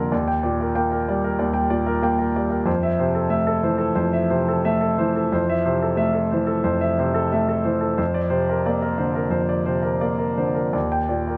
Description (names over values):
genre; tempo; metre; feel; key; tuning
neoclassical minimalist piano; 82-94 BPM; 4/4; rubato; F major; A4 = 440 Hz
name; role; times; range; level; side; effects
warm grand piano; solo; 0.0-11.4 s; Eb2 to C6; -22 LUFS; equal; none
room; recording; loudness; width
moderate recital hall reverb, RT60 1.3 s; nothing above 8.0 kHz; -22 LUFS; mono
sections
0.0-11.4 A section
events
none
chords
0.1 Ebmaj7; 2.7 Fmaj7; 8.0 Bbadd9/F; 10.7 Ebmaj7